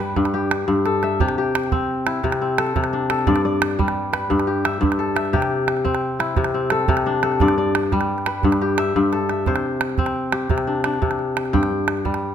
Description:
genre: west african traditional, West African string and xylophone music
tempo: 116 BPM (dotted quarters)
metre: 12/8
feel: straight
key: C major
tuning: A4 = 440 Hz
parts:
  - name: kora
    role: arpeggios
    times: 0.0-12.3 s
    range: G2 to G5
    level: -19 LUFS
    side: left 2 dB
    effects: none
  - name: calabash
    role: percussion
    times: 0.2-12.2 s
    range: none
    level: -24 LUFS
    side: right 5 dB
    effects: none
room: moderate recital hall reverb, RT60 1.5 s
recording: close, detailed microphones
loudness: -18 LUFS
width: side -9 dB against mid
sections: 0.0-9.5 A section; 9.5-12.3 B section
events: drum fill 0.7-1.2, 9.0-9.5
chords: 0.0 G; 1.2 C; 3.3 G; 5.3 C; 7.4 G; 9.5 C; 11.5 G5

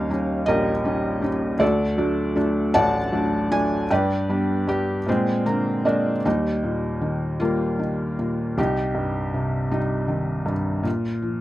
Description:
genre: classical, lyrical solo piano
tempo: 52 BPM (dotted quarters)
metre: 6/8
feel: rubato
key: Eb major from 6.3 s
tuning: A4 = 436 Hz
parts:
  - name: felt-muted upright piano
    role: solo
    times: 0.0-11.4 s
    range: A1 to Bb5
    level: -20 LUFS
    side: equal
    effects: none
room: light reverb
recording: close, detailed microphones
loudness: -20 LUFS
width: side -15 dB against mid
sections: 0.0-6.3 A section; 6.3-11.4 B section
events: felt piano fill 5.1-6.3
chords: 0.0 Eb7; 1.6 D; 3.9 G; 5.1 Bb7; 6.3 Ebadd9; 8.6 Cm; 10.9 Bb5

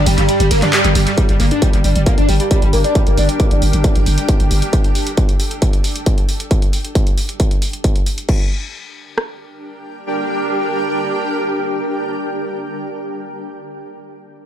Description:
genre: driving peak-time techno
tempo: 135 BPM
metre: 4/4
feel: straight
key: G minor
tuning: A4 = 441 Hz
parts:
  - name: overdriven synth lead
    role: riff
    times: 0.0-2.9 s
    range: G3 to D4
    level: -18 LUFS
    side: equal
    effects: distortion, phaser, tube saturation, ensemble chorus, sidechain pumping, dub echo
  - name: growling 808-style bass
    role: bass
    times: 0.0-4.6 s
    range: G1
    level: -16 LUFS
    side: equal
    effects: tube saturation, sidechain pumping, low-pass filter
  - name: metallic inharmonic drone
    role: drone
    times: 0.0-1.2 s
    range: G2 to D3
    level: -26 LUFS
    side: right 1 dB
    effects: chorus, built-in reverb, sidechain pumping
  - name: punchy analog drum machine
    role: drums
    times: 0.1-8.4 s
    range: crash cymbal, handclaps, hi-hat, ride cymbal, toms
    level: -22 LUFS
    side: equal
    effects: overdrive, sidechain pumping on hats, sidechain pumping on cymbals, sidechain pumping on toms, dub echo
  - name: techno drum kit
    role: drums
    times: 1.2-9.3 s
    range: kick drum, rim click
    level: -15 LUFS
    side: equal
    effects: distortion
  - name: granular cloud pad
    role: texture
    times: 2.0-12.1 s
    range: D4 to G5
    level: -22 LUFS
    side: right 1 dB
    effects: built-in reverb, sidechain pumping
room: little or no reverb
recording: echo-heavy mix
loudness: -14 LUFS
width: side -10 dB against mid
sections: 0.0-1.2 A section; 1.2-8.3 B section; 8.3-11.8 C section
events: break 0.0-1.2; drop 0.0-1.2; band accent 0.7; fade-out on ambient pad 1.2-6.5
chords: 0.0 G5; 1.2 Gm

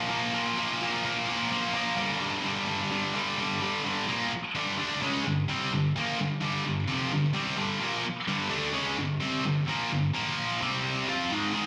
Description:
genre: rock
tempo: 128 BPM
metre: 4/4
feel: straight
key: G phrygian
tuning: A4 = 440 Hz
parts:
  - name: high-gain distorted guitar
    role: solo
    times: 0.0-11.7 s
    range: F2 to F4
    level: -29 LUFS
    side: equal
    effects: distortion, slapback echo
room: light reverb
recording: live gig heard through the venue's PA, club reverb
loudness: -29 LUFS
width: mono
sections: 0.0-3.8 A section; 3.8-11.3 B section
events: none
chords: 0.0 Bb5; 2.0 G5; 3.8 Gm; 10.1 Bb5; 10.6 C5; 11.1 F5

